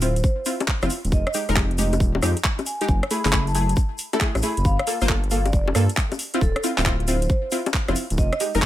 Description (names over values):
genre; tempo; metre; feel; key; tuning
UK garage, two-step garage; 136 BPM; 4/4; swing 66% on 16ths; unclear; A4 = 440 Hz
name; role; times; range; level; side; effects
vibraphone with medium mallets; melody; 0.0-8.4 s; A4 to B5; -30 LUFS; equal; ping-pong delay
punchy chord stab; stabs; 0.0-8.7 s; Ab3 to C5; -26 LUFS; equal; chorus, ping-pong delay
dark detuned saw bass; bass; 0.0-8.7 s; D1 to G2; -22 LUFS; equal; none
garage drum kit; drums; 0.0-8.7 s; bongos, handclaps, hi-hat, rim click; -26 LUFS; left 1 dB; none
tube shaker; percussion; 0.0-8.7 s; none; -35 LUFS; left 4 dB; none
electronic kick drum; drums; 0.2-8.7 s; none; -22 LUFS; equal; none
room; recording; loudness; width
little or no reverb; none; -19 LUFS; side -13 dB against mid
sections
0.0-8.7 A section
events
none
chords
0.0 Dm9; 1.1 Fm9; 2.9 F#m9; 4.7 Gm9; 6.2 Dm9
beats
0.24 0.68 | 1.12 1.56 2.00 2.44 | 2.89 3.33 3.77 4.21 | 4.65 5.09 5.53 5.97 | 6.42 6.86 7.30 7.74 | 8.18 8.62